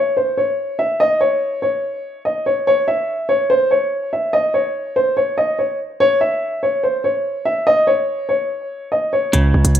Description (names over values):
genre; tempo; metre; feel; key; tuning
hip hop, drill; 144 BPM; 4/4; half-time; C# harmonic minor; A4 = 439 Hz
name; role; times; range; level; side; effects
dark upright piano; melody; 0.0-9.3 s; B#4 to E5; -16 LUFS; equal; none
clean electric guitar; accompaniment; 9.3-9.8 s; C#3; -17 LUFS; right 1 dB; spring reverb
hard-hitting 808-style bass; bass; 9.3-9.8 s; C#2; -13 LUFS; right 1 dB; none
electronic hi-hat; drums; 9.3-9.8 s; none; -21 LUFS; right 1 dB; none
room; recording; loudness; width
moderate digital room reverb, RT60 1.0 s, digital ambience; rough home demo mix; -15 LUFS; side -10 dB against mid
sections
0.0-9.8 A section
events
none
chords
none